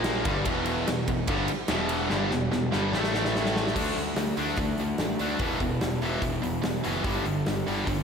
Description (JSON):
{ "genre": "hard rock", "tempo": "146 BPM", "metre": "4/4", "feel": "straight", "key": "E minor", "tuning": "A4 = 440 Hz", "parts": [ { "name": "distorted electric guitar", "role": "riff", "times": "0.0-8.0 s", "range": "E2 to D4", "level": "-31 LUFS", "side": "left 8 dB", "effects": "overdrive" }, { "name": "overdriven semi-hollow guitar", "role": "riff", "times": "0.0-8.0 s", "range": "E2 to D4", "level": "-33 LUFS", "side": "equal", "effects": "slapback echo" }, { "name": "tight distorted guitar", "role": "riff", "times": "0.0-8.0 s", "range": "E2 to D4", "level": "-31 LUFS", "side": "right 8 dB", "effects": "distortion, slapback echo" }, { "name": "fuzz picked electric bass", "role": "bass", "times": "0.0-8.0 s", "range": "E1 to D2", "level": "-33 LUFS", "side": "equal", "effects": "overdrive" }, { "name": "big rock drum kit", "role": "drums", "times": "0.0-8.0 s", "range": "crash cymbal, hi-hat, kick drum, ride cymbal, snare drum", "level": "-30 LUFS", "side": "equal", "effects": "none" } ], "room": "moderate lush hall reverb, RT60 1.6 s, small room ambience", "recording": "big arena sound", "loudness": "-24 LUFS", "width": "side -6 dB against mid", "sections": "0.0-3.8 A section; 3.8-8.0 B section", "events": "drum fill 2.1-3.8", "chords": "0.3 Em; 2.9 A5; 3.8 D5; 5.4 E5; 7.0 G5" }